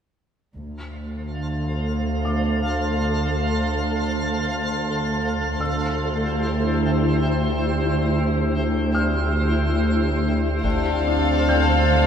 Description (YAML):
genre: cinematic, suspense film score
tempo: 71 BPM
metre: 3/4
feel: straight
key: D minor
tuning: A4 = 445 Hz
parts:
  - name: twinkling granular texture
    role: sustained chords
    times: 1.2-12.1 s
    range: E4 to F5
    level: -25 LUFS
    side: left 1 dB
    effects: built-in reverb
  - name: dark studio cello section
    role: bass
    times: 0.6-12.1 s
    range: D2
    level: -26 LUFS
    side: right 2 dB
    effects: none
  - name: rich studio double bass section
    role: bass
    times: 0.6-12.1 s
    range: D2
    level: -28 LUFS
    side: right 1 dB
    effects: none
  - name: pure sine sub bass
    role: drone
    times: 0.6-12.1 s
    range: D2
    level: -27 LUFS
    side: equal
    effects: none
  - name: felt-muted upright piano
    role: texture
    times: 2.2-12.1 s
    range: G5 to G6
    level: -31 LUFS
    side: left 1 dB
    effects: none
  - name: warm studio violin section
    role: melody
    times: 10.6-12.1 s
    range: F5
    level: -26 LUFS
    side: left 4 dB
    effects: none
  - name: rich studio violin section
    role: second line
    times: 10.6-12.1 s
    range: A4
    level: -27 LUFS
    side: left 2 dB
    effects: none
  - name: warm studio viola section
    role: accompaniment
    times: 10.6-12.1 s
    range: C4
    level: -26 LUFS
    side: right 2 dB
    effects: none
  - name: Celtic harp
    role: riff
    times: 10.6-12.1 s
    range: D3 to D4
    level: -25 LUFS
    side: left 4 dB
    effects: none
  - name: taiko ensemble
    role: drums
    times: 10.6-12.1 s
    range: none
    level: -32 LUFS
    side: equal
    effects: none
room: wet church reverb, RT60 2.9 s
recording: minimal, uncompressed stereo recording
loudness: -20 LUFS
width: side -8 dB against mid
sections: 0.6-10.6 A section; 10.6-12.1 B section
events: none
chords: 0.6 Dm7; 5.6 C/D; 10.6 Dm7